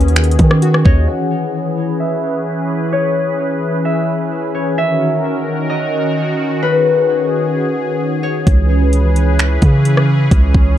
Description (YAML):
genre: hip hop, atmospheric cloud-rap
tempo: 130 BPM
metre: 4/4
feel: half-time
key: C# dorian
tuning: A4 = 439 Hz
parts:
  - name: concert harp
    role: melody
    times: 0.0-10.1 s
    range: B4 to F#5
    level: -19 LUFS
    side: left 2 dB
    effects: low-pass filter, tape echo
  - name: sweeping resonant pad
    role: sustained chords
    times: 0.0-10.8 s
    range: D#3 to C#5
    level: -18 LUFS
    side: left 1 dB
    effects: chorus, sidechain pumping, low-pass filter
  - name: glassy digital keys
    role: arpeggios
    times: 0.0-1.1 s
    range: D#3 to D#5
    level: -25 LUFS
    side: left 2 dB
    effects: chorus, tape echo
  - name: long sustained 808-style bass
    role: bass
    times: 0.0-1.1, 8.5-10.8 s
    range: C#2 to D#3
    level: -12 LUFS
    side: equal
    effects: none
  - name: trap drum kit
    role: drums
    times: 0.0-1.0, 8.5-10.7 s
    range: finger snaps, hi-hat, kick drum, rim click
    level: -13 LUFS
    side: equal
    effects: overdrive
room: little or no reverb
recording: dark, warm production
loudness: -12 LUFS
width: side -11 dB against mid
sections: 0.0-1.1 A section; 1.1-8.5 B section; 8.5-10.8 C section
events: filter sweep 1.1-8.5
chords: 0.0 D#m7; 1.1 C#m7; 4.8 D#m7; 8.5 C#m7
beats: 0.16 0.62 | 1.08 1.54 2.01 2.47 | 2.93 3.39 3.85 4.31 | 4.78 5.24 5.70 6.16 | 6.62 7.08 7.54 8.01 | 8.47 8.93 9.39 9.85 | 10.31 10.78